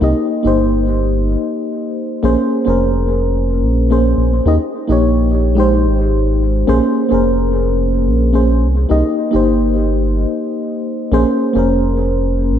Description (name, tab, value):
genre	sunset chillout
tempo	108 BPM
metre	4/4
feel	swing 56% on 16ths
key	Bb dorian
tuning	A4 = 440 Hz
part	mellow FM electric piano	accompaniment	0.0-12.6 s	Ab3 to Eb5	-15 LUFS	left 1 dB	chorus, auto-pan, tape echo
part	round analog bass	bass	0.0-12.6 s	F1 to Eb2	-16 LUFS	equal	none
room	moderate plate reverb, RT60 2.7 s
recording	echo-heavy mix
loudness	-13 LUFS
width	side -9 dB against mid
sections	0.0-6.7 A section; 6.7-12.6 A section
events	none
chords	0.0 Cm7; 2.2 Bbm9; 4.5 Eb7; 5.6 Abmaj7; 6.7 Bbm9; 8.6 Cm7; 11.1 Bbm9